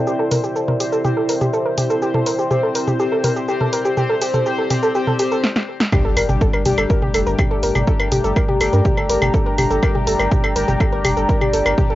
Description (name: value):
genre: melodic techno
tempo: 123 BPM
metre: 4/4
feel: straight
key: G dorian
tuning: A4 = 440 Hz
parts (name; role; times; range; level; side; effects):
- dark analog pad; sustained chords; 0.0-11.9 s; A3 to Bb5; -25 LUFS; right 2 dB; chorus, phaser, sidechain pumping, cassette tape
- analog synth brass; stabs; 0.0-11.9 s; G3 to C5; -23 LUFS; left 3 dB; chorus, vintage 12-bit sampler grit, sidechain pumping, cassette tape, tape echo
- soft round pluck; arpeggios; 0.1-11.9 s; G4 to Bb4; -21 LUFS; equal; chorus, sidechain pumping, cassette tape, tape echo
- house drum kit; drums; 0.1-11.9 s; claves, hi-hat, shaker, snare drum, toms; -21 LUFS; equal; small room ambience, cassette tape
- electronic kick drum; drums; 5.9-11.9 s; none; -19 LUFS; equal; small room ambience, cassette tape
- impact; sound effects; 5.9-7.9 s; none; -28 LUFS; equal; none
- round analog bass; bass; 6.2-11.7 s; F1 to G2; -22 LUFS; equal; sidechain pumping
room: wet booth ambience, RT60 0.2 s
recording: home recording on cassette, nothing above 7.5 kHz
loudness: -15 LUFS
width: side -15 dB against mid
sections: 0.0-5.9 A section; 5.9-11.9 B section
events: build-up 0.0-5.9; filter sweep on synth arpeggio sound 0.0-5.9; filter sweep on analog polysynth 0.0-5.9; drum fill 5.4-5.9; drop 5.9-11.9; impact 5.9-7.9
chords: 0.0 Cadd9; 5.9 Gmadd9